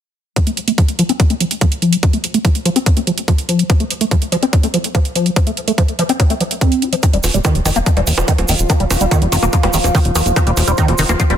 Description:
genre	psychedelic trance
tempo	144 BPM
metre	4/4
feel	straight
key	unclear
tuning	A4 = 441 Hz
part	liquid acid bass	riff	0.4-11.3 s	Eb3 to F4	-17 LUFS	moving between left 4 dB and right 3 dB	chorus, auto-pan, sidechain pumping, ping-pong delay
part	electronic hi-hat and bongos	drums	0.4-11.4 s	none	-21 LUFS	right 4 dB	overdrive, studio reverb
part	electronic kick drum	drums	0.4-11.3 s	none	-14 LUFS	equal	overdrive, studio reverb
part	overtone-sweeping drone	sustained chords	7.8-11.4 s	F3 to F4	-21 LUFS	left 1 dB	chorus, built-in reverb, sidechain pumping
part	egg shaker	percussion	7.0-11.3 s	none	-24 LUFS	right 3 dB	none
part	fat analog bass	bass	7.1-11.4 s	Eb1 to F1	-17 LUFS	equal	tube saturation
room	light reverb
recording	dense, heavily limited modern master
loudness	-13 LUFS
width	side -10 dB against mid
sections	0.4-11.4 A section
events	filter sweep on acid bass 0.4-11.4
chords	0.4 F5; 7.0 Eb5

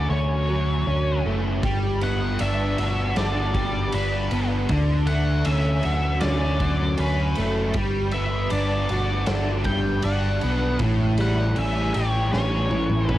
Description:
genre	rock, shoegaze and dream pop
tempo	78 BPM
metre	4/4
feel	straight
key	G lydian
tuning	A4 = 440 Hz
part	octave-fuzz lead guitar	melody	0.0-13.2 s	B4 to G5	-30 LUFS	left 1 dB	distortion, cassette tape, analog delay
part	overdriven electric guitar	riff	0.0-13.2 s	A2 to G4	-24 LUFS	equal	ensemble chorus
part	deep dub picked electric bass	bass	0.0-13.2 s	F#1 to D2	-24 LUFS	equal	none
part	big rock drum kit	drums	1.6-13.2 s	kick drum, ride cymbal, snare drum, toms	-30 LUFS	equal	none
room	light reverb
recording	home recording on cassette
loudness	-20 LUFS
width	side -14 dB against mid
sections	0.0-13.2 A section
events	drum fill 12.3-13.2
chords	0.0 Dmaj7; 1.6 Gmaj7; 4.7 Dmaj7; 7.8 Gmaj7; 10.8 A7

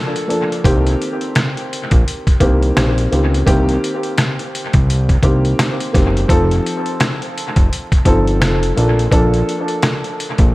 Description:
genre	hip hop, boom-bap hip-hop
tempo	85 BPM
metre	4/4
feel	swing 60% on 16ths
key	C dorian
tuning	A4 = 440 Hz
part	dark upright piano	accompaniment	0.0-10.5 s	Eb3 to A4	-18 LUFS	equal	dub echo
part	trip hop sampler-style drum kit	drums	0.2-10.5 s	hi-hat, kick drum, rim click, snare drum	-16 LUFS	equal	dub echo
part	fat analog bass	bass	0.6-10.5 s	F1 to Db2	-16 LUFS	equal	none
room	light reverb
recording	echo-heavy mix, vinyl crackle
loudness	-13 LUFS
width	side -19 dB against mid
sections	0.0-6.3 A section; 6.3-10.5 B section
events	none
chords	0.0 Bbmaj7; 0.6 Cm7; 6.3 F7; 8.8 Bbmaj7

